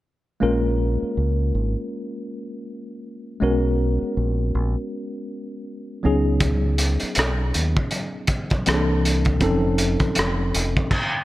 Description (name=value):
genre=R&B, neo-soul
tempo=80 BPM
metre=4/4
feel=swing 60% on 16ths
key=unclear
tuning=A4 = 444 Hz
part: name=tine electric piano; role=accompaniment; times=0.4-10.9 s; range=E3 to A#4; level=-24 LUFS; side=left 1 dB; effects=overdrive, fast stereo tremolo
part: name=deep dub fingered electric bass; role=bass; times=0.4-10.7 s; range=F1 to D#2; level=-22 LUFS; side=equal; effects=none
part: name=crunchy breakbeat drum kit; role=drums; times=6.4-11.1 s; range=crash cymbal, hi-hat, kick drum, rim click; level=-22 LUFS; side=equal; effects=none
room=light reverb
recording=none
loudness=-19 LUFS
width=side -16 dB against mid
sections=0.4-11.2 A section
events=none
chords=0.4 A#m7; 3.4 G#m11; 6.0 C#9sus4; 8.7 C13; 9.4 F7b13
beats=| 0.41 1.16 1.91 2.65 | 3.40 4.16 4.91 5.66 | 6.41 7.16 7.91 8.65 | 9.40 10.15 10.90